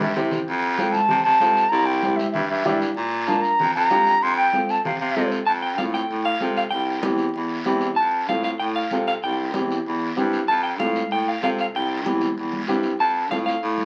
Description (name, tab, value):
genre	latin, cumbia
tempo	192 BPM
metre	4/4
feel	straight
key	F major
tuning	A4 = 439 Hz
part	bright reedy concert flute	melody	0.0-5.3 s	E5 to C6	-22 LUFS	equal	none
part	breathy baritone saxophone	bass	0.0-13.8 s	C2 to C3	-28 LUFS	equal	none
part	congas	percussion	0.0-13.8 s	none	-34 LUFS	equal	none
part	clear upright piano	accompaniment	0.2-13.5 s	C4 to D5	-28 LUFS	equal	none
part	guiro	percussion	0.2-13.8 s	none	-38 LUFS	equal	none
part	clean electric guitar	second line	5.5-13.8 s	F5 to A5	-26 LUFS	equal	none
room	wet small room reverb, RT60 0.5 s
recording	very old 78 rpm record, vinyl crackle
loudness	-22 LUFS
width	mono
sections	0.0-5.5 A section; 5.5-13.8 B section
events	drum fill 0.0-0.5; clean electric guitar solo 5.5-13.8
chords	0.5 F; 1.7 C; 3.0 Bb; 4.2 F; 6.7 C; 8.0 F; 9.2 C; 10.5 F; 11.7 C; 13.0 F